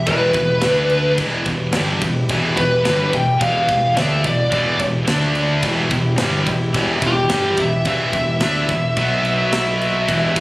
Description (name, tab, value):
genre	heavy metal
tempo	108 BPM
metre	4/4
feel	straight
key	E minor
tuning	A4 = 440 Hz
part	high-gain lead guitar	melody	0.0-10.4 s	G4 to G5	-19 LUFS	equal	distortion, tape echo
part	rich studio string section	sustained chords	0.0-10.4 s	D3 to D5	-29 LUFS	equal	none
part	high-gain distorted guitar	riff	0.0-10.4 s	E2 to D4	-23 LUFS	left 2 dB	distortion
part	scooped high-gain guitar	riff	0.0-10.4 s	E2 to D4	-22 LUFS	right 2 dB	distortion
part	growling fingered electric bass	bass	0.0-10.4 s	E1 to D2	-23 LUFS	equal	overdrive
part	tight metal drum kit	drums	0.1-10.4 s	crash cymbal, kick drum, snare drum	-25 LUFS	equal	none
room	light reverb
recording	recorded on a phone in the room, studio reverb, compression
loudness	-15 LUFS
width	side -20 dB against mid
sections	0.0-10.4 A section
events	none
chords	0.0 Em; 0.6 D5; 1.2 Em; 5.1 D5; 5.6 Em; 9.0 B5